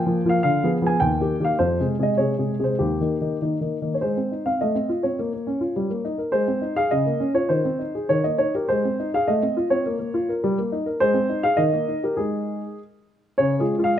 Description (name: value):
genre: classical-period piano sonatina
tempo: 102 BPM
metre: 2/4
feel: rubato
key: Ab major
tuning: A4 = 439 Hz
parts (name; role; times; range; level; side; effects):
- dark baby grand piano; solo; 0.0-14.0 s; Eb2 to Ab5; -20 LUFS; equal; none
room: moderate recital hall reverb, RT60 1.3 s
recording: close, detailed microphones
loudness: -20 LUFS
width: side -10 dB against mid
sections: 0.0-4.0 A section; 4.0-13.4 B section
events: none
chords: 0.4 Ddim7; 1.0 Eb; 1.6 Fm; 2.8 Eb; 4.0 Ab; 4.6 F7/A; 5.2 Bbm; 5.8 Eb7/G; 6.3 Ab; 6.9 Bbm/Db; 7.5 Ab/Eb; 8.1 Eb; 8.7 Ab; 9.3 F7/A; 9.9 Bbm; 10.4 Eb/G; 11.0 Ab; 11.6 Eb; 12.2 Ab5; 13.4 Db